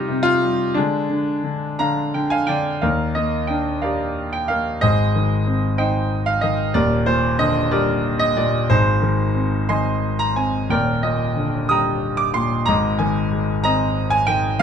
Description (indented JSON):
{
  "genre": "classical, lyrical solo piano",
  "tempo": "57-63 BPM (dotted quarters)",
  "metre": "6/8",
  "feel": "rubato",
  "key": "Eb major",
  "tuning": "A4 = 440 Hz",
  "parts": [
    { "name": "clear concert grand piano", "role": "solo", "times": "0.0-14.6 s", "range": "Eb1 to Eb6", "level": "-17 LUFS", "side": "equal", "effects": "none" }
  ],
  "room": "little or no reverb",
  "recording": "close, detailed microphones",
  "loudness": "-17 LUFS",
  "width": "side -7 dB against mid",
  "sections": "0.0-2.8 A section; 2.8-14.6 B section",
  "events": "grand piano fill 1.8-2.8",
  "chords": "0.0 Cm; 0.8 Ddim; 2.8 Ebmaj7; 4.8 Ab; 6.7 Ebmaj7; 8.7 Ab; 10.7 Ebmaj7; 12.7 Ab"
}